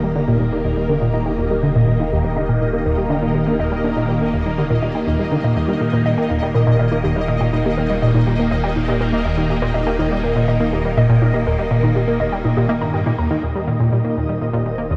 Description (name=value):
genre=ambient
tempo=122 BPM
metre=4/4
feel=straight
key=Eb major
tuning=A4 = 440 Hz
part: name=phased string machine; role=sustained chords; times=0.0-15.0 s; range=Eb3 to C5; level=-24 LUFS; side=equal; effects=ensemble chorus, phaser, shimmer reverb
part: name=warbly dusty pluck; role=arpeggios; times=0.0-13.4 s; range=Eb4 to Bb5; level=-28 LUFS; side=equal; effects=chorus, tape echo, shimmer reverb
part: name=tight sequenced synth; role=riff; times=0.0-15.0 s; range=Eb2 to Bb3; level=-21 LUFS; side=equal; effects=chorus, tape echo
part: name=round analog bass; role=bass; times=0.0-15.0 s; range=Eb1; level=-30 LUFS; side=equal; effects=none
part: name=pulsing gated texture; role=texture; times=0.0-15.0 s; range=Eb5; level=-33 LUFS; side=equal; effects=chorus, built-in reverb, shimmer reverb
room=wet huge ambient reverb, RT60 8.3 s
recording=in a vast, echoing space, cassette tape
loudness=-18 LUFS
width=mono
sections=0.0-13.4 A section; 13.4-15.0 B section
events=filter sweep on synth arpeggio sound 0.0-13.4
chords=0.0 Eb